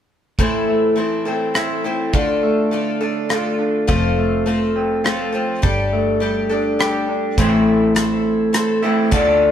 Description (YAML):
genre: folk rock and heartland rock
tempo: 103 BPM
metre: 3/4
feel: straight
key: A minor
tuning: A4 = 440 Hz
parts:
  - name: picked twelve-string acoustic guitar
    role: accompaniment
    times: 0.4-9.5 s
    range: A2 to A4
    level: -19 LUFS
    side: left 3 dB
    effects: none
  - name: electric guitar through a small old amp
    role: riff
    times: 0.4-9.5 s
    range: F2 to G4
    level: -20 LUFS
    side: right 2 dB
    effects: none
  - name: damped 70s drum kit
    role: drums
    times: 0.4-9.3 s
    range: hi-hat, kick drum, rim click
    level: -20 LUFS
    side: right 1 dB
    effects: none
  - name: fingered electric bass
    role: bass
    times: 3.9-9.5 s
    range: F1 to D2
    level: -24 LUFS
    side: right 1 dB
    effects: none
room: moderate stone room reverb, RT60 1.3 s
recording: band playing live in one room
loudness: -16 LUFS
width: side -9 dB against mid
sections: 0.4-7.4 A section; 7.4-9.5 B section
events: none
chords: 0.4 Am; 2.1 Dm; 3.9 F; 5.6 Gsus2; 7.4 Am